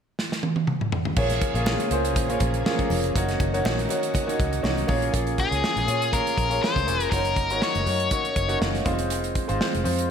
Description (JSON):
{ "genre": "polished 1980s jazz-funk pop", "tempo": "121 BPM", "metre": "4/4", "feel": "swing 54% on 16ths", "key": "Bb minor", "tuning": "A4 = 440 Hz", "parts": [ { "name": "modern studio drum kit", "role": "drums", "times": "0.2-10.1 s", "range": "crash cymbal, hi-hat, kick drum, snare drum, toms", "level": "-26 LUFS", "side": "right 1 dB", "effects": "gated reverb" }, { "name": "clear grand piano", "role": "accompaniment", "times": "1.2-10.1 s", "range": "G3 to F5", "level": "-26 LUFS", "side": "equal", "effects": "lush chorus" }, { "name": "string machine, violins", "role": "sustained chords", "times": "1.2-5.1 s", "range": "Db3 to Ab4", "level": "-34 LUFS", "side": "equal", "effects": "ensemble chorus" }, { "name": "vintage muted fingered electric bass", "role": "bass", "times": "1.2-10.1 s", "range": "E1 to Bb2", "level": "-28 LUFS", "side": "equal", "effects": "none" }, { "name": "congas", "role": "percussion", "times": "1.4-5.0 s", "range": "none", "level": "-38 LUFS", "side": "right 2 dB", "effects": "none" }, { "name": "nasal lead guitar with a parked wah", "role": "melody", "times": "5.4-8.6 s", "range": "Ab4 to Db5", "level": "-25 LUFS", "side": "left 4 dB", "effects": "overdrive" } ], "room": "moderate plate reverb, RT60 2.2 s", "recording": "bright 1980s-style digital production", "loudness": "-21 LUFS", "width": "side -7 dB against mid", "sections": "0.0-1.2 A section; 1.2-5.1 B section; 5.1-10.1 C section", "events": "drum fill 0.2-1.2; grand piano fill 8.4-9.1", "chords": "0.0 N.C.; 1.2 Bbm7; 3.2 Gb6; 4.9 Bbm7; 7.1 Gb6; 8.9 Fm7" }